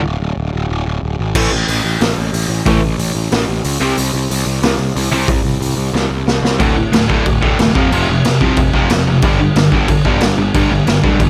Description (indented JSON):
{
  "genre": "punk rock",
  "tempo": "183 BPM",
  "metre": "4/4",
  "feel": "straight",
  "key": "unclear",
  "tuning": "A4 = 444 Hz",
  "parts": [
    { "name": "fuzz picked electric bass", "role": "bass", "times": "0.0-11.3 s", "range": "D1 to C#2", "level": "-20 LUFS", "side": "equal", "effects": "overdrive" },
    { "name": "cranked stack guitar", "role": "riff", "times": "1.4-11.3 s", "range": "D2 to C4", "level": "-17 LUFS", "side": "equal", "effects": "overdrive" },
    { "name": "raw garage drum kit", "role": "drums", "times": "1.4-11.3 s", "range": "crash cymbal, hi-hat, kick drum, snare drum", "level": "-18 LUFS", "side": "equal", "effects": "none" }
  ],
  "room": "light reverb",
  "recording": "none",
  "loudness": "-15 LUFS",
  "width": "mono",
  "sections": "0.0-6.6 A section; 6.6-11.3 B section",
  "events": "half time 0.0-6.6; drum fill 5.9-6.6",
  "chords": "0.0 D5; 1.3 N.C.; 3.8 C5; 6.6 D5; 7.8 F5; 9.2 G5"
}